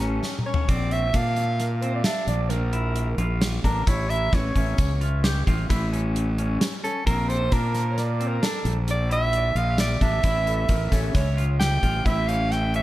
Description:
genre	progressive instrumental, band music in an uneven meter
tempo	132 BPM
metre	7/4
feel	straight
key	unclear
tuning	A4 = 440 Hz
part	clean electric guitar	arpeggios	0.0-12.8 s	C4 to G4	-33 LUFS	left 1 dB	spring reverb, tape echo
part	fuzz fingered electric bass	bass	0.0-12.8 s	A1 to Bb2	-24 LUFS	equal	overdrive
part	gated 80s drum kit	drums	0.0-12.8 s	hi-hat, kick drum, snare drum, toms	-25 LUFS	equal	none
part	clear soprano saxophone	melody	0.5-12.8 s	A4 to G5	-28 LUFS	right 2 dB	tape echo
part	warm alto saxophone	second line	1.6-11.5 s	A4 to E5	-32 LUFS	right 3 dB	none
room	light reverb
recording	echo-heavy mix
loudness	-21 LUFS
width	side -15 dB against mid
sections	0.0-12.8 A section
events	soprano saxophone solo 0.0-12.8; drum fill 0.2-0.7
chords	0.0 A; 0.7 Bb; 3.9 A; 7.1 Bb; 10.2 A7

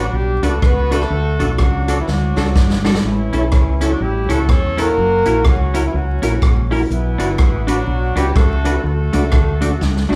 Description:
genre	ska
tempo	124 BPM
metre	4/4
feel	swing 60% on 8ths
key	unclear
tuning	A4 = 436 Hz
part	warm horn section	melody	0.0-10.2 s	E3 to C#5	-24 LUFS	equal	none
part	semi-hollow electric guitar	accompaniment	0.0-10.2 s	A3 to B4	-26 LUFS	equal	tape echo
part	mellow tonewheel organ	stabs	0.0-10.2 s	D4 to D5	-26 LUFS	equal	chorus vibrato, fast rotary speaker
part	fingered electric bass	bass	0.0-10.2 s	F#1 to E2	-21 LUFS	equal	none
part	swinging big-band drum kit	drums	0.4-10.2 s	hi-hat, kick drum, rim click, snare drum	-19 LUFS	equal	none
room	wet large studio reverb, RT60 0.9 s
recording	band playing live in one room, vinyl crackle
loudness	-16 LUFS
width	mono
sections	0.0-10.2 A section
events	drum fill 2.1-3.0, 9.8-10.2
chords	0.0 Bm; 3.0 A; 5.0 F#7; 6.9 Bm; 8.8 D

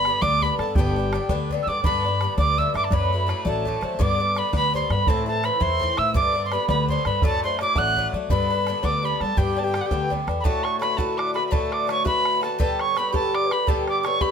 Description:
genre	celtic folk, Celtic jig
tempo	112 BPM (dotted quarters)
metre	6/8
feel	straight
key	G major, D major from 10.4 s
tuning	A4 = 440 Hz
part	mellow tin whistle	melody	0.0-14.3 s	F#5 to F#6	-24 LUFS	right 2 dB	none
part	cimbalom	second line	0.0-14.3 s	G4 to F#5	-30 LUFS	right 3 dB	none
part	mellow hollow wooden flute	second line	0.0-14.3 s	G4 to F#5	-32 LUFS	left 3 dB	none
part	Irish bouzouki	accompaniment	0.0-14.3 s	G2 to G4	-28 LUFS	left 6 dB	none
part	upright bass	bass	0.0-10.4 s	G1 to G3	-27 LUFS	left 1 dB	none
part	bodhran	percussion	0.1-14.3 s	none	-25 LUFS	right 1 dB	none
room	light reverb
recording	none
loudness	-20 LUFS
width	side -7 dB against mid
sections	0.0-1.8 A section; 1.8-10.4 A section; 10.4-14.3 B section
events	none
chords	0.0 G; 2.9 D/F#; 4.0 G; 5.1 Am; 6.1 G; 7.2 D/F#; 8.3 G; 10.4 D; 12.6 G

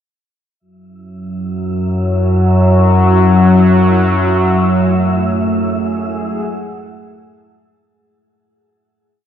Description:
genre	dark ambient drone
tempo	free time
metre	none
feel	none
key	F# minor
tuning	A4 = 440 Hz
part	analog drone	drone	1.3-8.0 s	F#2 to F#3	-11 LUFS	left 1 dB	chorus, phaser
part	wind-like tuned noise texture	texture	1.6-7.9 s	E4 to E5	-25 LUFS	left 1 dB	built-in reverb, shimmer reverb
part	deep dark ambient pad	sustained chords	5.1-7.9 s	A3 to F#5	-21 LUFS	right 4 dB	chorus, built-in reverb
room	moderate huge ambient reverb, RT60 7.5 s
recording	none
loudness	-11 LUFS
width	side -9 dB against mid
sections	0.6-7.9 A section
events	fade-in on synth texture 0.6-7.9; fade-out 4.3-7.9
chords	0.6 F#madd9

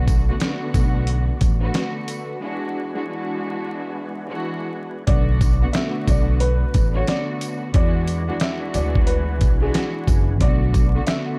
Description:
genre	hip hop, boom-bap hip-hop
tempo	90 BPM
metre	4/4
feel	swing 63% on 16ths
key	B dorian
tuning	A4 = 440 Hz
part	warm studio string section	accompaniment	0.0-11.4 s	D3 to F#4	-30 LUFS	equal	high-pass filter, low-pass filter
part	tonewheel organ	sustained chords	0.0-11.4 s	E3 to G#4	-37 LUFS	equal	chorus vibrato, fast rotary speaker, high-pass filter, low-pass filter
part	upright bass	bass	0.0-11.0 s	F#1 to E2	-24 LUFS	equal	none
part	dusty soul sampler-style drum kit	drums	0.1-11.3 s	hi-hat, kick drum, snare drum	-22 LUFS	equal	none
part	tambourine	percussion	0.1-10.9 s	none	-44 LUFS	equal	none
part	dark upright piano	melody	5.1-11.4 s	G#4 to E5	-31 LUFS	equal	high-pass filter, low-pass filter, digital delay
room	little or no reverb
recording	dark, warm production, vinyl crackle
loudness	-21 LUFS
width	mono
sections	0.0-5.1 A section; 5.1-11.4 B section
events	break 2.4-5.1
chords	0.0 Bm7; 2.4 E9; 5.1 Bm7; 7.7 E9; 10.4 Bm7

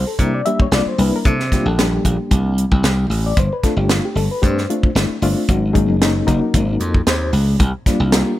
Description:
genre	electric jazz fusion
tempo	113 BPM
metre	4/4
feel	straight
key	unclear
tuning	A4 = 440 Hz
part	reed electric piano	accompaniment	0.0-8.4 s	Gb3 to E5	-20 LUFS	left 2 dB	fast tremolo
part	slap bass	bass	0.0-8.2 s	Gb1 to C3	-18 LUFS	equal	none
part	tight funk drum kit	drums	0.2-8.3 s	hi-hat, kick drum, snare drum	-18 LUFS	equal	none
room	little or no reverb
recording	none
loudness	-14 LUFS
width	side -14 dB against mid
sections	0.0-8.4 A section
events	none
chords	0.0 C7sus2; 3.4 G9sus4; 5.5 Ab9sus4; 7.6 C9sus4

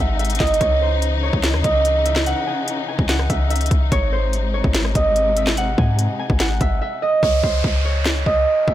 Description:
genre	hip hop, trap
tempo	145 BPM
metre	4/4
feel	half-time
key	C# harmonic minor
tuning	A4 = 440 Hz
part	concert harp	melody	0.0-8.7 s	B#4 to G#5	-20 LUFS	right 3 dB	low-pass filter
part	warm symphonic string section	sustained chords	0.0-7.2 s	B#2 to D#4	-26 LUFS	left 5 dB	none
part	clean 808-style bass	bass	0.0-8.7 s	G#1 to G#2	-20 LUFS	equal	none
part	trap drum kit	drums	0.2-8.7 s	handclaps, hi-hat, kick drum, rim click, snare drum	-21 LUFS	equal	none
part	downlifter	sound effects	7.2-8.7 s	none	-26 LUFS	equal	none
room	little or no reverb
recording	blown-out, overdriven recording, overdrive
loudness	-16 LUFS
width	side -13 dB against mid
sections	0.0-7.2 A section; 7.2-8.7 B section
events	drums muted 6.8-7.2; hi-hats muted 7.2-8.7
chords	0.0 G#; 0.6 C#madd9; 3.9 G#; 7.2 C#sus2

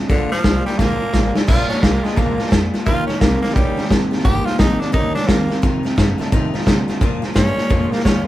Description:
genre	rockabilly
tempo	174 BPM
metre	4/4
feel	swing 63% on 8ths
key	Bb major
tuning	A4 = 440 Hz
part	picked steel-string acoustic guitar	accompaniment	0.0-8.3 s	F2 to G4	-26 LUFS	left 4 dB	none
part	electric guitar through a small old amp	riff	0.0-8.2 s	F2 to Db4	-25 LUFS	right 2 dB	none
part	raspy tenor saxophone	melody	0.1-8.3 s	D3 to G4	-22 LUFS	equal	none
part	upright bass	bass	0.1-8.3 s	G1 to C3	-23 LUFS	equal	none
part	vintage drum kit	drums	0.1-8.2 s	crash cymbal, hi-hat, kick drum, snare drum	-17 LUFS	equal	none
room	light reverb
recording	band playing live in one room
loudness	-15 LUFS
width	side -14 dB against mid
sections	0.0-1.5 A section; 1.5-8.3 B section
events	drum fill 0.8-1.5; tenor saxophone solo 1.5-8.3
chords	0.1 Bb; 2.9 Eb; 5.6 F7; 7.0 Bb

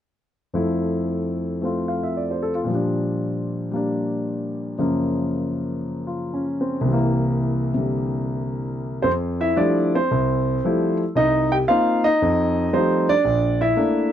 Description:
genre	solo jazz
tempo	114 BPM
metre	4/4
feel	swing 69% on 8ths, rubato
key	F major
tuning	A4 = 438 Hz
part	warm concert grand piano	solo	0.5-14.1 s	Bb1 to G5	-19 LUFS	equal	none
room	little or no reverb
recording	dry, close 1970s-style studio recording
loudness	-20 LUFS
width	side -10 dB against mid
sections	0.6-9.0 A section; 9.0-14.1 B section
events	none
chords	0.6 Fmaj7; 2.7 Bb6; 4.8 Gbmaj7; 6.9 C7; 9.0 Fmaj9; 11.2 Cm7; 12.2 F9; 13.3 Bbmaj7

